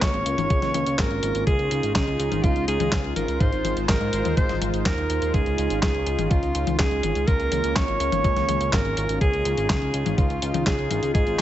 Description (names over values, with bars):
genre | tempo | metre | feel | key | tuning
italo disco | 124 BPM | 4/4 | straight | Db major | A4 = 440 Hz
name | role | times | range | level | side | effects
warm alto saxophone | melody | 0.0-11.4 s | F4 to Db5 | -26 LUFS | right 1 dB | ping-pong delay
warm analog pad | sustained chords | 0.0-11.4 s | Ab3 to C5 | -29 LUFS | equal | chorus
chorused synth bass | bass | 0.0-11.4 s | Ab1 to Ab2 | -27 LUFS | equal | tube saturation
clean 12-bit digital drum machine | drums | 0.0-11.4 s | handclaps, hi-hat, snare drum, toms | -28 LUFS | left 3 dB | none
electronic kick drum | drums | 0.0-11.2 s | none | -23 LUFS | equal | none
room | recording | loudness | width
light reverb, digital ambience | nothing above 8.0 kHz | -20 LUFS | side -12 dB against mid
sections
0.0-11.4 A section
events
none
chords
0.0 Bbm; 1.5 Dbadd9; 3.4 Ab6; 5.3 Dbadd9; 7.3 Bbm; 9.2 Dbadd9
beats
0.02 0.50 0.98 | 1.47 1.95 2.44 2.92 | 3.40 3.89 4.37 4.86 | 5.34 5.82 6.31 6.79 | 7.28 7.76 8.24 8.73 | 9.21 9.70 10.18 10.66 | 11.15